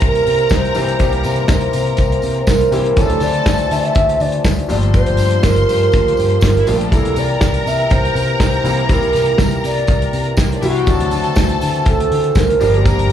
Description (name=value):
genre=disco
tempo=122 BPM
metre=4/4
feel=straight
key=unclear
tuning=A4 = 440 Hz
part: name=clear studio string section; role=second line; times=0.0-13.1 s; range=Bb3 to C6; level=-23 LUFS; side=equal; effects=slapback echo
part: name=warm baby grand piano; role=accompaniment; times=0.0-13.1 s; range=Bb2 to G4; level=-25 LUFS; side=left 4 dB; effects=plate reverb, slapback echo
part: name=mellow French horn section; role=sustained chords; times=0.0-13.1 s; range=Bb2 to C5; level=-22 LUFS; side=equal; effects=plate reverb
part: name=fingered electric bass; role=bass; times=0.0-13.1 s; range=G1 to D3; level=-18 LUFS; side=equal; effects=none
part: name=warm soul drum kit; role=drums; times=0.0-13.1 s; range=hi-hat, kick drum, snare drum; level=-17 LUFS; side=equal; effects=none
part: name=mellow hollow wooden-headed alto flute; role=melody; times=0.1-13.1 s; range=F#4 to E5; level=-18 LUFS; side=right 2 dB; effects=plate reverb, slapback echo
part: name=tambourine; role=percussion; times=0.5-13.0 s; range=none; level=-35 LUFS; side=right 4 dB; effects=none
room=light reverb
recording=live gig heard through the venue's PA, club reverb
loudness=-12 LUFS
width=side -10 dB against mid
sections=0.0-13.1 A section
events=none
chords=0.0 C7; 3.0 D9; 4.7 Gm9; 6.9 C7; 10.9 D9; 12.6 Gm7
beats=0.02 0.51 | 1.00 1.49 1.99 2.48 | 2.97 3.46 3.96 4.45 | 4.94 5.44 5.93 6.42 | 6.92 7.41 7.91 8.40 | 8.89 9.39 9.88 10.38 | 10.87 11.37 11.86 12.36 | 12.85